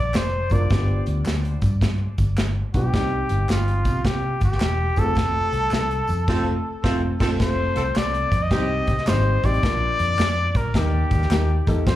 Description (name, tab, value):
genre	uptempo 1960s-style soul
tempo	108 BPM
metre	4/4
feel	swing 65% on 8ths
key	unclear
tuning	A4 = 440 Hz
part	clear trumpet	melody	0.0-12.0 s	F4 to Eb5	-25 LUFS	left 2 dB	plate reverb, slapback echo, tape echo
part	vintage muted fingered electric bass	bass	0.0-12.0 s	E1 to C3	-23 LUFS	equal	none
part	natural country drum kit	drums	0.1-12.0 s	crash cymbal, hi-hat, kick drum, snare drum	-24 LUFS	equal	none
part	congas	percussion	0.1-11.8 s	none	-37 LUFS	left 1 dB	none
part	handclaps and tambourine	percussion	0.1-12.0 s	none	-41 LUFS	equal	slapback echo
part	warm upright piano	accompaniment	0.5-12.0 s	G3 to C5	-28 LUFS	left 1 dB	tube saturation, plate reverb, slapback echo
part	warm horn section	second line	6.3-9.0 s	C4 to A4	-30 LUFS	right 2 dB	plate reverb, slapback echo
room	light reverb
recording	live gig heard through the venue's PA, club reverb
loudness	-19 LUFS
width	side -14 dB against mid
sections	0.0-7.4 A section; 7.4-12.0 B section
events	band accent 5.2-7.4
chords	0.0 Bb; 0.7 G7; 2.9 Cm; 4.9 F; 8.5 Cm; 9.6 Bb; 10.7 Eb